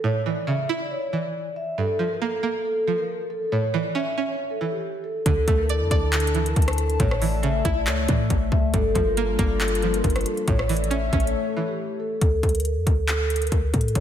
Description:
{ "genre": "hip hop, trap", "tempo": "138 BPM", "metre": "4/4", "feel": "half-time", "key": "D harmonic minor", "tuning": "A4 = 440 Hz", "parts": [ { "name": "vibraphone with soft mallets", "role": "melody", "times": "0.0-14.0 s", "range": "G4 to E5", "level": "-26 LUFS", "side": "equal", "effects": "low-pass filter, ping-pong delay" }, { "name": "string-like resonator pluck", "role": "accompaniment", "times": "0.0-12.2 s", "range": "G2 to D5", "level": "-28 LUFS", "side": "right 4 dB", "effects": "chorus" }, { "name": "dark analog pad", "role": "sustained chords", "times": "5.6-12.2 s", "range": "D3 to A5", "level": "-30 LUFS", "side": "left 3 dB", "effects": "chorus" }, { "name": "clean 808-style bass", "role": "bass", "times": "5.3-14.0 s", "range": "G1 to A2", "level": "-24 LUFS", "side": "equal", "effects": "none" }, { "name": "trap drum kit", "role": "drums", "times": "5.3-14.0 s", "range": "handclaps, hi-hat, kick drum, rim click", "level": "-24 LUFS", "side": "left 1 dB", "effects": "overdrive" } ], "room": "moderate lush hall reverb, RT60 1.8 s", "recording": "dreamy mix soaked in reverb", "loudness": "-21 LUFS", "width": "side -10 dB against mid", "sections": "0.0-12.2 A section; 12.2-14.0 B section", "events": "break 11.3-12.2; filter sweep on vibraphone 12.2-14.0", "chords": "0.0 A; 1.8 Gm7; 3.5 A; 5.3 Dsus2; 7.0 A; 8.7 Gm7; 10.5 A; 12.2 D5", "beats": "| 0.04 0.48 0.91 1.34 | 1.78 2.21 2.65 3.08 | 3.52 3.95 4.39 4.82 | 5.26 5.69 6.13 6.56 | 7.00 7.43 7.87 8.30 | 8.74 9.17 9.61 10.04 | 10.48 10.91 11.35 11.78 | 12.21 12.65 13.08 13.52 | 13.95" }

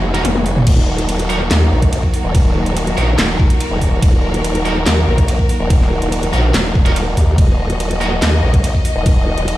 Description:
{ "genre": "heavy wobble dubstep", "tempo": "143 BPM", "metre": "4/4", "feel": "half-time", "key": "Eb minor", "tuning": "A4 = 442 Hz", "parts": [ { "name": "warm studio string section", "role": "sustained chords", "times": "0.0-9.6 s", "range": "Eb3 to Eb5", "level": "-20 LUFS", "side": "equal", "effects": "sidechain pumping" }, { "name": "formant-sweep wobble bass", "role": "bass", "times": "0.0-9.6 s", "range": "Eb1 to Eb2", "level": "-16 LUFS", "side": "equal", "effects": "chorus, overdrive" }, { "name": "heavy high-gain guitar", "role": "stabs", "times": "0.1-8.1 s", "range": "Eb4 to Bb4", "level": "-25 LUFS", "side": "right 2 dB", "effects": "distortion, ping-pong delay" }, { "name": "dubstep drum kit", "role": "drums", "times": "0.1-9.6 s", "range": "crash cymbal, handclaps, hi-hat, ride cymbal, snare drum, toms", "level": "-22 LUFS", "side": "equal", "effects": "studio reverb" }, { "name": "electronic kick drum", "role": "drums", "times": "0.7-9.1 s", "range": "none", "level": "-13 LUFS", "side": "equal", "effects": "studio reverb" } ], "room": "digital ambience", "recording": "played on a big sound system in a bare room, stone room reverb", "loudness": "-12 LUFS", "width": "side -15 dB against mid", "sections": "0.0-9.6 A section", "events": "break 0.0-0.7; drum fill 0.2-0.7", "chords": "0.0 Ebm", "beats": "0.25 | 0.67 1.09 1.51 1.93 | 2.35 2.77 3.19 3.60 | 4.03 4.44 4.86 5.28 | 5.70 6.12 6.54 6.96 | 7.38 7.80 8.22 8.64 | 9.06 9.48" }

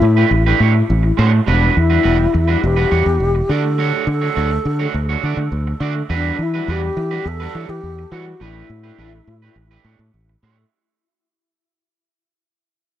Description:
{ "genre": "disco", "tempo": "104 BPM", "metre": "4/4", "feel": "straight", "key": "E dorian", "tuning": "A4 = 440 Hz", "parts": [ { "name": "breathy mellow wooden-headed alto flute", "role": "melody", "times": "0.0-10.1 s", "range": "D4 to A4", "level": "-21 LUFS", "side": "left 3 dB", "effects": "tape echo" }, { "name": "electric guitar at the edge of break-up", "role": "accompaniment", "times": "0.0-10.6 s", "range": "G3 to D5", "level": "-22 LUFS", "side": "right 9 dB", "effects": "spring reverb" }, { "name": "fingered electric bass", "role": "bass", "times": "0.0-10.6 s", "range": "E1 to E3", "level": "-17 LUFS", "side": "equal", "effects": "none" } ], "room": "little or no reverb", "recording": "dry, close 1970s-style studio recording", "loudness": "-14 LUFS", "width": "side -11 dB against mid", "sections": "0.0-1.5 A section; 1.5-10.7 B section", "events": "fade-out 1.5-10.7", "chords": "0.0 A9sus4; 1.5 Em9; 3.5 Dmaj7; 6.1 Em9; 8.4 A9sus4", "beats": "0.33 0.90 | 1.48 2.06 2.63 3.21 | 3.79 4.36 4.94 5.52 | 6.10 6.67 7.25 7.83 | 8.41 8.99 9.56 10.14" }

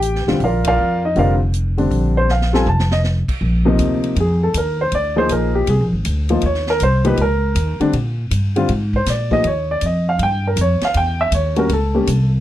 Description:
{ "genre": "jazz piano trio", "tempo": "159 BPM", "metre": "4/4", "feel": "swing 65% on 8ths", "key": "Bb mixolydian", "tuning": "A4 = 440 Hz", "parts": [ { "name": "dark baby grand piano", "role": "melody", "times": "0.0-12.3 s", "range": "C3 to A5", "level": "-18 LUFS", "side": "equal", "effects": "none" }, { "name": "upright bass", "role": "bass", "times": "0.0-12.4 s", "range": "F1 to Bb2", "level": "-18 LUFS", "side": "equal", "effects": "none" }, { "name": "swinging big-band drum kit", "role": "drums", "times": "0.0-12.2 s", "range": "crash cymbal, hi-hat, kick drum, ride cymbal, snare drum, toms", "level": "-28 LUFS", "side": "equal", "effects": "none" } ], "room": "small room ambience", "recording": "dry, close 1970s-style studio recording", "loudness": "-15 LUFS", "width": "side -13 dB against mid", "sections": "0.0-3.4 A section; 3.4-12.4 B section", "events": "band accent 0.6; drum fill 2.3-3.0; grand piano solo 3.4-12.4", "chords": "0.4 Bb; 2.7 F; 3.4 Bb7; 6.4 Eb7(no3); 7.9 Bb7; 9.4 Eb; 10.9 Edim7", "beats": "0.02 | 0.40 0.78 1.15 1.53 | 1.91 2.29 2.66 3.04 | 3.42 3.79 4.17 4.54 | 4.92 5.30 5.67 6.05 | 6.43 6.80 7.18 7.55 | 7.93 8.31 8.68 9.06 | 9.44 9.81 10.19 10.57 | 10.94 11.32 11.69 12.07" }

